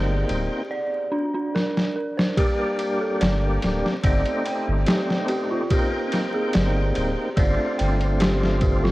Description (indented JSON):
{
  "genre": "trip hop",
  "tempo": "72 BPM",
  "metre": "4/4",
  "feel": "straight",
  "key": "G minor",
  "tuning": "A4 = 440 Hz",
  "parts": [
    { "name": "percussive tonewheel organ", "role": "accompaniment", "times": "0.0-8.9 s", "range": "G3 to G5", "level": "-26 LUFS", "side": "equal", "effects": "overdrive, fast rotary speaker, tremolo, tape echo" },
    { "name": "dark detuned synth bell", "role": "arpeggios", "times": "0.0-8.9 s", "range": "D4 to G5", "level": "-27 LUFS", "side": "right 1 dB", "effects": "chorus, tape echo" },
    { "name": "soft dub sub bass", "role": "bass", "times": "0.0-8.9 s", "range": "D1 to G1", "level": "-23 LUFS", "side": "equal", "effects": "none" },
    { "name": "flickering grainy texture", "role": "texture", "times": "0.7-8.9 s", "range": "C4 to C5", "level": "-36 LUFS", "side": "left 1 dB", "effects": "none" },
    { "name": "trip hop sampler-style drum kit", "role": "drums", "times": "0.3-8.9 s", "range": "kick drum, ride cymbal, snare drum", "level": "-24 LUFS", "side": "equal", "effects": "none" }
  ],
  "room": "light reverb",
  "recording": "worn, warbling old tape, cassette tape, vinyl crackle, warbly pitch drift",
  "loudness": "-20 LUFS",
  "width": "side -18 dB against mid",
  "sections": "0.0-2.4 A section; 2.4-8.9 A section",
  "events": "drum fill 1.5-2.4",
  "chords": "0.0 Abmaj7; 0.7 Bb; 2.4 Gm; 4.0 F7/G (rootless); 5.7 Abmaj7; 7.4 G9sus4"
}